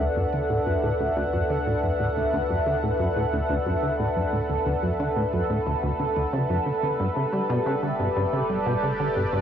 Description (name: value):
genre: ambient, sequencer-driven space music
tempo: 90 BPM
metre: 4/4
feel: straight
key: unclear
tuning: A4 = 440 Hz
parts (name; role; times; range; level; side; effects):
- sweeping resonant pad; sustained chords; 0.0-9.4 s; G3 to F#5; -25 LUFS; equal; chorus, cassette tape
- wide unison pluck; arpeggios; 0.0-9.4 s; F#4 to D5; -44 LUFS; right 6 dB; none
- plucky analog bass; riff; 0.0-9.4 s; D2 to G3; -27 LUFS; equal; cassette tape, analog delay
- warm sub bass; bass; 0.0-9.4 s; G1 to D2; -35 LUFS; equal; none
room: wet studio reverb, RT60 0.6 s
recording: home recording on cassette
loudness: -22 LUFS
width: side -9 dB against mid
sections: 0.0-9.4 A section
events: filter sweep on analog synth bass 0.0-9.4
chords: 0.0 D6; 7.0 Gadd9